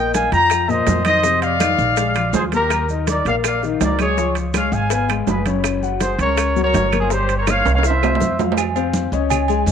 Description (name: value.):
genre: latin, salsa.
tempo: 164 BPM.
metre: 4/4.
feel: straight.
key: F minor.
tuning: A4 = 440 Hz.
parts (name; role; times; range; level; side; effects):
mellow trumpet section; melody; 0.0-8.4 s; F4 to Bb5; -19 LUFS; equal; none.
dark concert grand piano; accompaniment; 0.0-9.7 s; Bb2 to Ab5; -23 LUFS; left 11 dB; none.
upright bass; bass; 0.0-9.7 s; Gb1 to F2; -22 LUFS; right 1 dB; none.
bongos and cowbell; percussion; 0.1-9.7 s; none; -31 LUFS; left 13 dB; none.
congas; percussion; 0.1-9.7 s; none; -26 LUFS; right 1 dB; none.
maracas; percussion; 0.1-9.7 s; none; -33 LUFS; right 18 dB; none.
timbales and agogo bells; percussion; 0.1-9.7 s; none; -25 LUFS; right 12 dB; none.
claves; percussion; 0.5-9.5 s; none; -30 LUFS; right 12 dB; none.
room: moderate spring reverb, RT60 2.4 s.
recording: 1960s-style stereo with parts hard left and right.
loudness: -15 LUFS.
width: side -8 dB against mid.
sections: 0.0-8.6 A section; 8.6-9.7 B section.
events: drum fill 7.7-8.6.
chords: 0.0 Bbsus24; 1.2 F5; 2.0 Bb6; 2.7 Ebmaj7(no3); 4.2 Db7; 5.6 Gb; 7.1 Gdim; 7.8 Cadd11; 8.6 F5.